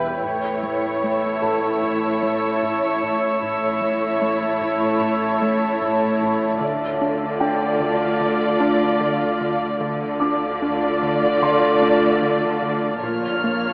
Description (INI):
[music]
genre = cinematic, suspense film score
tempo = 75 BPM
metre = 4/4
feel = straight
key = unclear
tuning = A4 = 441 Hz
[part]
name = muted studio violin section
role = melody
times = 0.0-13.7 s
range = B4 to D5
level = -27 LUFS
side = equal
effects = none
[part]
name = muted studio viola section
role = accompaniment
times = 0.0-13.7 s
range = G3 to F4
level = -27 LUFS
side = equal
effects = none
[part]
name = deep dark ambient pad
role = sustained chords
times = 0.0-13.7 s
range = E#4 to A5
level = -28 LUFS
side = equal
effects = chorus, built-in reverb
[part]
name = rubbery square bass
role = riff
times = 0.0-13.7 s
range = A2 to D4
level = -32 LUFS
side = equal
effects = none
[part]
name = muted studio cello section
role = bass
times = 0.0-13.7 s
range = E2 to D3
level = -30 LUFS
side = equal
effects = none
[part]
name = muted studio double bass section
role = bass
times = 0.0-13.7 s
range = E1 to D2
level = -36 LUFS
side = equal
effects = none
[part]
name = deep rumbling drone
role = drone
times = 0.0-13.7 s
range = A1 to E2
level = -47 LUFS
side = equal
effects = none
[part]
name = warm concert grand piano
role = texture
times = 0.0-13.7 s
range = A4 to D6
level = -30 LUFS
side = equal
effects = none
[part]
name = muted studio violin section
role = texture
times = 0.2-6.2, 13.0-13.7 s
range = C#6 to E#6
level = -31 LUFS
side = equal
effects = none
[sound]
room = wet scoring stage reverb, RT60 1.6 s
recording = AM radio sound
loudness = -21 LUFS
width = mono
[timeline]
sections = 0.0-13.7 A section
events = none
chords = 0.2 A; 6.6 Dm; 13.0 A#m